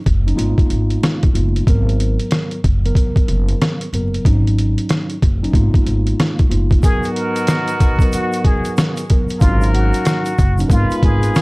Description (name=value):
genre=hip hop, boom-bap hip-hop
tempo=93 BPM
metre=4/4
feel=swing 62% on 16ths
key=G# dorian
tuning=A4 = 438 Hz
part: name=upright bass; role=bass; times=0.1-11.3 s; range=F#1 to G#1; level=-17 LUFS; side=equal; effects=none
part: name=trip hop sampler-style drum kit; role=drums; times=0.1-11.4 s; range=hi-hat, kick drum, rim click, snare drum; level=-15 LUFS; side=equal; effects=none
part: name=mellow tine electric piano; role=accompaniment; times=0.3-11.4 s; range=G#2 to A#4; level=-22 LUFS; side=equal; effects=medium stereo tremolo, cassette tape, high-pass filter, low-pass filter
part: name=trumpet with plunger mute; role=melody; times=6.8-11.4 s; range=E#4 to A#4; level=-23 LUFS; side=equal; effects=high-pass filter, low-pass filter, tape echo
part: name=warm horn section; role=stabs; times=6.8-11.4 s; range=F#3 to B4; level=-25 LUFS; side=equal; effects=high-pass filter, low-pass filter, tape echo
part: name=tube shaker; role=percussion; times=6.8-11.4 s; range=none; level=-40 LUFS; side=left 3 dB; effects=none
room=studio ambience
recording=dry, gritty hardware recording, vinyl crackle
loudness=-13 LUFS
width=side -25 dB against mid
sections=0.0-6.8 A section; 6.8-11.4 B section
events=none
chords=0.4 G#m13; 1.7 G#m9; 4.2 D#m7/G#; 5.5 G#m13; 6.8 G#m9; 9.4 D#m7/G#; 10.7 G#m69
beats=0.38 1.02 | 1.67 2.31 2.96 3.60 | 4.25 4.89 5.54 6.19 | 6.83 7.48 8.12 8.77 | 9.41 10.06 10.70 11.35